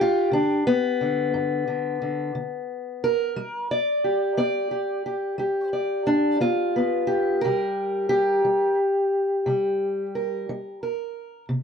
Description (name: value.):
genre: acoustic country blues, solo or duo.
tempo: 59 BPM (dotted quarters).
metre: 12/8.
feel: straight.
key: G mixolydian.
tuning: A4 = 440 Hz.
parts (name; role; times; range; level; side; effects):
fingerpicked steel-string acoustic guitar; solo; 0.0-11.6 s; G2 to D5; -22 LUFS; left 1 dB; none.
room: moderate studio reverb, RT60 0.6 s.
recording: dark, warm production.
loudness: -22 LUFS.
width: side -6 dB against mid.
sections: 0.0-11.6 A section.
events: none.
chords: 0.0 G7; 7.4 C7(no3).